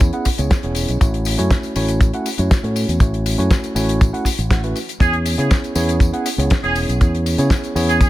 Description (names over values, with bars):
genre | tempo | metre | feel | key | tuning
nu-disco, nu disco | 120 BPM | 4/4 | straight | E major | A4 = 439 Hz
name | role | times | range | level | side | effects
mellow tine electric piano | accompaniment | 0.0-8.1 s | A3 to F#5 | -22 LUFS | right 1 dB | sidechain pumping, digital delay
fingered electric bass with an envelope filter | bass | 0.0-8.1 s | E1 to C#3 | -20 LUFS | equal | none
damped 70s drum kit | drums | 0.0-8.1 s | hi-hat, snare drum | -25 LUFS | left 2 dB | small room ambience
kick drum | drums | 0.0-8.1 s | none | -15 LUFS | equal | small room ambience
tambourine | percussion | 0.0-8.1 s | none | -32 LUFS | left 5 dB | none
muted trumpet section | melody | 5.0-8.1 s | G#4 | -22 LUFS | right 3 dB | digital delay
room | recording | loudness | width
studio reverb | none | -15 LUFS | side -16 dB against mid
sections
0.0-8.1 A section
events
none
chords
0.0 E6; 1.0 A6; 5.0 E6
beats
0.01 0.51 | 1.01 1.51 2.01 2.51 | 3.01 3.51 4.01 4.51 | 5.01 5.51 6.01 6.51 | 7.01 7.51 8.01